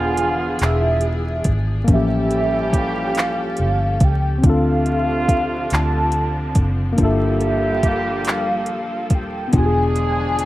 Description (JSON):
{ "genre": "slow six-eight R&B", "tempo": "47 BPM (dotted quarters)", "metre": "6/8", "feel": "straight", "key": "D minor", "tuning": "A4 = 438 Hz", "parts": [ { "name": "warm velvety synth lead", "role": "melody", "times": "0.0-10.5 s", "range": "E5 to A5", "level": "-23 LUFS", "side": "right 1 dB", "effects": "chorus, tremolo" }, { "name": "tine electric piano", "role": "accompaniment", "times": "0.0-10.5 s", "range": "F3 to A4", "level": "-23 LUFS", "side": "left 3 dB", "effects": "overdrive" }, { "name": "warm studio string section", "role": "sustained chords", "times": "0.0-10.5 s", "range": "D3 to A4", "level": "-29 LUFS", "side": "left 1 dB", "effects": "none" }, { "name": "warm horn section", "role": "stabs", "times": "0.0-10.5 s", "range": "C3 to G#4", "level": "-26 LUFS", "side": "right 3 dB", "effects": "none" }, { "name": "vintage muted fingered electric bass", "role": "bass", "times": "0.0-10.5 s", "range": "Eb1 to D2", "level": "-21 LUFS", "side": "equal", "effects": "none" }, { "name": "smooth R&B drum kit", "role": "drums", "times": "0.2-10.5 s", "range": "handclaps, hi-hat, kick drum", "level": "-18 LUFS", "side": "equal", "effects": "overdrive" } ], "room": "light reverb", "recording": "rough home demo mix, vinyl crackle", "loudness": "-16 LUFS", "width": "side -16 dB against mid", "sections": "0.0-10.5 A section", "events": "none", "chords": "0.0 E7b9; 1.9 A7b9b13; 4.4 Dm7; 7.0 Gm9; 9.5 E7b9" }